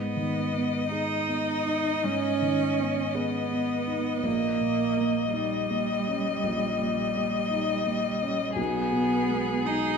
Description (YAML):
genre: classical, slow romantic movement for piano trio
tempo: 55 BPM (dotted quarters)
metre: 12/8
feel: rubato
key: G# minor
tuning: A4 = 440 Hz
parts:
  - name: rich violin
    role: melody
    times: 0.0-10.0 s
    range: G#4 to D#5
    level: -30 LUFS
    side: left 7 dB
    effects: none
  - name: rich cello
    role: second line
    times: 0.0-10.0 s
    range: G3 to D#4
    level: -29 LUFS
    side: right 6 dB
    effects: none
  - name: dark grand piano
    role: accompaniment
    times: 0.0-10.0 s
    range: A#1 to G#4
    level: -30 LUFS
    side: left 1 dB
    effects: none
room: wet concert hall reverb, RT60 1.8 s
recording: minimal, uncompressed stereo recording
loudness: -24 LUFS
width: side -6 dB against mid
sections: 0.0-10.0 A section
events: none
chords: 0.0 G#m; 4.2 D#7/A#; 8.6 G#m/B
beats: 0.92 2.05 3.15 | 4.25 5.34 6.44 7.51 | 8.58 9.64